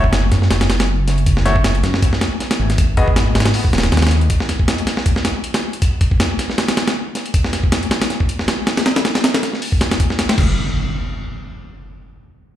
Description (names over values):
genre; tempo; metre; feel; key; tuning
drum and bass, jungle; 158 BPM; 4/4; swing 55% on 16ths; unclear; A4 = 440 Hz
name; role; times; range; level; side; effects
dark detuned saw bass; bass; 0.0-4.3, 10.4-10.6 s; D#1 to G#2; -16 LUFS; equal; tube saturation
breakbeat sampler-style drum kit; drums; 0.0-10.5 s; crash cymbal, hi-hat, kick drum, snare drum; -16 LUFS; equal; none
bright grand piano; stabs; 1.5-3.0 s; A3 to D#5; -25 LUFS; left 2 dB; dub echo
impact; sound effects; 10.4-11.9 s; none; -24 LUFS; equal; none
room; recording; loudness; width
light reverb, digital ambience; played on a big sound system in a bare room, large studio reverb; -14 LUFS; side -12 dB against mid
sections
0.0-10.4 A section; 10.4-11.9 B section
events
none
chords
0.0 N.C.; 2.8 G#5; 6.6 N.C.